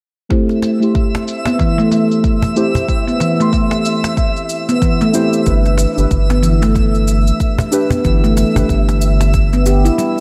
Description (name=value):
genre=organic downtempo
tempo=93 BPM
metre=4/4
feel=swing 60% on 16ths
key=A minor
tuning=A4 = 441 Hz
part: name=muted felt-like synth keys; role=accompaniment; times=0.3-10.2 s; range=A3 to C6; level=-22 LUFS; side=equal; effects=chorus, sidechain pumping, low-pass filter, digital delay
part: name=handpan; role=arpeggios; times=0.3-10.2 s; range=E3 to G4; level=-19 LUFS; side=equal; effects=low-pass filter, digital delay
part: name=electronic kick drum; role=drums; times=0.3-9.5 s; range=none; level=-19 LUFS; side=equal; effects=none
part: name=shaker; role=drums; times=0.3-10.1 s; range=none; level=-31 LUFS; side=equal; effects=low-pass filter on perc, low-pass filter on room
part: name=twinkling granular texture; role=texture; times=0.6-10.2 s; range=E5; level=-26 LUFS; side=equal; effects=built-in reverb
part: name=cajon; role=percussion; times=0.5-9.3 s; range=none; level=-22 LUFS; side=equal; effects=none
part: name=round analog bass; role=bass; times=5.5-9.9 s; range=G1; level=-16 LUFS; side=equal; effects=sidechain pumping
room=light reverb, digital ambience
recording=none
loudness=-14 LUFS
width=mono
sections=0.3-10.2 A section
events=filter sweep on synth keys 0.3-10.2; break 10.0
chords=0.3 Am7; 5.5 G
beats=| 0.30 0.95 1.60 2.24 | 2.89 3.53 4.18 4.82 | 5.47 6.11 6.76 7.40 | 8.05 8.69 9.34 9.98